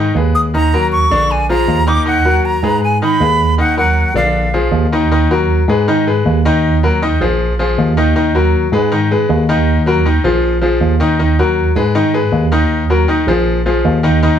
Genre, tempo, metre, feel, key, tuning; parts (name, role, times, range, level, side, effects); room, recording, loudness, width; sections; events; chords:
latin, salsa; 158 BPM; 4/4; straight; Eb minor; A4 = 442 Hz
bright grand piano; accompaniment; 0.0-14.4 s; D3 to Eb5; -15 LUFS; left 2 dB
bell-like tine electric piano; bass; 0.0-14.4 s; Bb1 to Ab2; -14 LUFS; right 1 dB; slow stereo tremolo
bright silver concert flute; melody; 0.3-4.7 s; F5 to Eb6; -15 LUFS; right 2 dB
wet studio ambience, RT60 0.4 s; heard from further back in the room; -11 LUFS; side -9 dB against mid
0.0-5.1 A section; 5.1-14.4 B section
0.0 Abm; 0.5 Ebm7; 1.3 Bb7; 2.1 Ebm; 2.8 Abm; 3.6 Ebm; 4.4 Bb7; 5.1 Ebm; 5.9 Abm; 6.6 Ebm; 7.4 Bb5; 8.2 Ebm; 8.9 Abm; 9.7 Ebm; 10.4 Bb5; 11.2 Ebm; 11.9 Abm; 12.7 Ebm; 13.5 Bb5